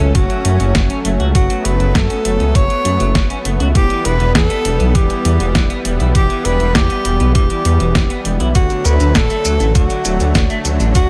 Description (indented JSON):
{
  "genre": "synthwave",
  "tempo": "100 BPM",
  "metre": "4/4",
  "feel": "straight",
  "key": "unclear",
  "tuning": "A4 = 440 Hz",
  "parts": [
    { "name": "breathy tenor saxophone", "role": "melody", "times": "0.0-11.1 s", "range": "F#4 to C#5", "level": "-22 LUFS", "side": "equal", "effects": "tape echo" },
    { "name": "lush unison pad", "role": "sustained chords", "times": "0.0-11.1 s", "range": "D3 to C#4", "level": "-25 LUFS", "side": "equal", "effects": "chorus, sidechain pumping" },
    { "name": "clean electric guitar", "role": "riff", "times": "0.0-11.0 s", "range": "D3 to F#4", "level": "-30 LUFS", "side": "equal", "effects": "lush chorus, tape echo" },
    { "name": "detuned saw bass", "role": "bass", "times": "0.0-11.1 s", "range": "D1 to F#2", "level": "-18 LUFS", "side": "equal", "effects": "chorus, sidechain pumping" },
    { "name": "detuned 8-bit digital drum machine", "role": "drums", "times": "0.0-11.1 s", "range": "hi-hat, shaker, snare drum", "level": "-22 LUFS", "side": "equal", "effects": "none" },
    { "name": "impact", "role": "sound effects", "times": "0.0-1.4 s", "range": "none", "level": "-34 LUFS", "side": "equal", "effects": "none" },
    { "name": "electronic kick drum", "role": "drums", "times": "0.1-11.1 s", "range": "none", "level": "-18 LUFS", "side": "equal", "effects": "none" }
  ],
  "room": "little or no reverb",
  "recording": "none",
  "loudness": "-15 LUFS",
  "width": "mono",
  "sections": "0.0-11.1 A section",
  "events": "impact 0.0-1.4",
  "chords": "0.0 F#m; 3.8 Em; 8.6 D"
}